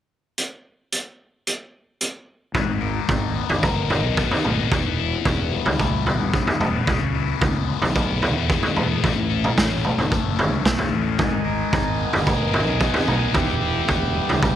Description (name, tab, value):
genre	psychedelic rock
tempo	111 BPM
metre	4/4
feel	straight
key	G# harmonic minor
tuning	A4 = 440 Hz
part	raw garage drum kit	drums	0.4-14.6 s	hi-hat, kick drum, snare drum, toms	-22 LUFS	right 1 dB	none
part	fuzz guitar	riff	2.5-14.6 s	G#2 to A#4	-24 LUFS	left 11 dB	distortion, phaser
part	fuzz fingered electric bass	bass	2.5-14.6 s	E1 to E2	-26 LUFS	right 1 dB	overdrive
part	combo organ	sustained chords	11.2-14.6 s	G4 to G#5	-27 LUFS	right 12 dB	none
room	light reverb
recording	1960s-style stereo with parts hard left and right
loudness	-19 LUFS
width	side -11 dB against mid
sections	0.4-2.5 A section; 2.5-14.6 B section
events	none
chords	0.4 N.C.; 2.5 G#madd9; 4.7 Em; 6.9 C#m7; 9.0 A; 11.2 G#madd9; 13.4 Em